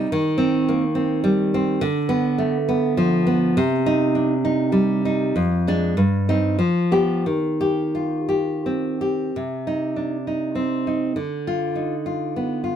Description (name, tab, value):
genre	romantic piece for solo classical guitar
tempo	85-107 BPM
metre	3/4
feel	rubato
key	C minor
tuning	A4 = 440 Hz
part	nylon-string guitar	solo	0.0-12.8 s	F2 to G4	-19 LUFS	equal	none
room	moderate small room reverb, RT60 0.5 s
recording	none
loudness	-19 LUFS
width	side -9 dB against mid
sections	0.0-9.3 A section; 9.3-12.8 B section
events	none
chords	0.1 Cm/Eb; 1.8 Bdim/D; 3.6 Cm; 5.4 Ddim/F; 6.0 Cm/G; 6.6 G7/F; 7.3 Cm/Eb; 9.3 Cm; 11.2 Dm6